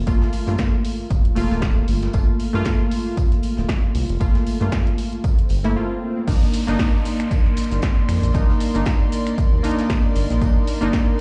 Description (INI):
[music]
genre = deep house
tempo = 116 BPM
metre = 4/4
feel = swing 56% on 16ths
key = C minor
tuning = A4 = 437 Hz
[part]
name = warm analog keys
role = stabs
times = 0.0-11.2 s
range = A3 to F4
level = -26 LUFS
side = equal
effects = chorus, sidechain pumping, tape echo
[part]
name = round analog bass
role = bass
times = 0.0-10.9 s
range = D1 to G2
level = -24 LUFS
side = equal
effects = tube saturation, sidechain pumping
[part]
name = electronic kick drum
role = drums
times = 0.1-11.0 s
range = none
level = -22 LUFS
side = equal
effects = small room ambience
[part]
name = punchy analog drum machine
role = drums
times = 0.1-11.1 s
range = crash cymbal, finger snaps, hi-hat, shaker, snare drum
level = -33 LUFS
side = equal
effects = small room ambience
[part]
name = vintage brush drum kit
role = drums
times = 0.1-11.1 s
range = hi-hat, snare drum, tambourine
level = -42 LUFS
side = equal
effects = sidechain pumping on hats, high-pass filter on hats, small room ambience, high-pass filter on snare, sidechain pumping on perc, high-pass filter on perc, high-pass filter on room
[part]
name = swell and downlifter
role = sound effects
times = 5.5-10.4 s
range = none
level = -40 LUFS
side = equal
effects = none
[part]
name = airy breathy pad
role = sustained chords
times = 6.6-11.2 s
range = Bb4 to C6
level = -34 LUFS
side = equal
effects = chorus, sidechain pumping
[sound]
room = light reverb, studio ambience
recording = played on a big sound system in a bare room, large studio reverb, nothing above 10.9 kHz, faint mains hum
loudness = -20 LUFS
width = mono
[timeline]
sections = 0.0-6.3 A section; 6.3-11.2 B section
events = swell 5.5-6.3; break 5.8-6.3; drop 6.3-11.2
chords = 0.0 Gm9; 6.3 Cm9